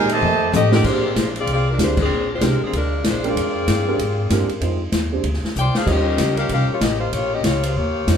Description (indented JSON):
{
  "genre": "jazz, big band swing",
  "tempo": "191 BPM",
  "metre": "4/4",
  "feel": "swing 60% on 8ths",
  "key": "Bb mixolydian",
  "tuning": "A4 = 437 Hz",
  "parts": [
    { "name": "clear trumpet section", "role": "melody", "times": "0.0-0.5 s", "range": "Eb4 to A5", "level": "-20 LUFS", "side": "right 3 dB", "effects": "none" },
    { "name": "dark trombone section", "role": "second line", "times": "0.0-0.5 s", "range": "C3 to A3", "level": "-23 LUFS", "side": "right 2 dB", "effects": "none" },
    { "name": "warm grand piano", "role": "accompaniment", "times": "0.0-8.2 s", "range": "G3 to G5", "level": "-24 LUFS", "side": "right 4 dB", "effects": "none" },
    { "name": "upright bass", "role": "bass", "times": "0.0-8.2 s", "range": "A1 to Bb2", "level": "-22 LUFS", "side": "equal", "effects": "none" },
    { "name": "swinging big-band drum kit", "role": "drums", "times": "0.1-8.2 s", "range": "crash cymbal, hi-hat, kick drum, ride cymbal, snare drum, toms", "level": "-23 LUFS", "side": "left 1 dB", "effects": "none" },
    { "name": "mellow saxophone section", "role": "melody", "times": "0.5-8.2 s", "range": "F3 to G5", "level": "-22 LUFS", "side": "left 4 dB", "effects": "none" },
    { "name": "warm saxophone section", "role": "sustained chords", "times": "0.7-1.1 s", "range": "D3 to G4", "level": "-30 LUFS", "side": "equal", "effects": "none" }
  ],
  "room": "wet large studio reverb, RT60 1.3 s",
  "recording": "heard from further back in the room",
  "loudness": "-17 LUFS",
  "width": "side -7 dB against mid",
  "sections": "0.8-8.2 A section",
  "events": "drum fill 0.2-0.8, 5.6-5.9; band accent 1.9",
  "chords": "0.2 F13; 0.8 Bb13; 4.6 Fm7; 5.2 Fsus2; 5.9 Eb13"
}